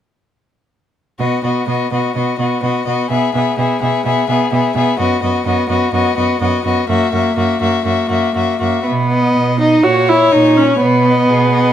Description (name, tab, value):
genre	quick classical-period movement for string quartet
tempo	125 BPM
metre	4/4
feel	rubato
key	B major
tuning	A4 = 440 Hz
part	clear violin	melody	1.2-11.7 s	G#4 to E5	-20 LUFS	left 10 dB	none
part	rich violin	second line	1.2-11.7 s	F#4 to D#5	-19 LUFS	left 4 dB	none
part	rich viola	accompaniment	1.2-11.7 s	A#3 to F#4	-15 LUFS	right 2 dB	none
part	rich cello	bass	1.2-11.7 s	F#2 to B2	-20 LUFS	right 4 dB	none
room	light reverb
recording	none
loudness	-12 LUFS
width	side -10 dB against mid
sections	1.2-8.9 A section; 8.9-11.7 B section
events	none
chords	1.2 B; 5.0 B/F#; 6.9 F#7; 8.9 B; 9.8 A#dim; 10.8 B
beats	| 1.20 1.68 2.16 2.63 | 3.11 3.58 4.05 4.52 | 4.99 5.46 5.93 6.41 | 6.89 7.37 7.85 8.35 | 8.86 9.36 9.85 10.33 | 10.81 11.29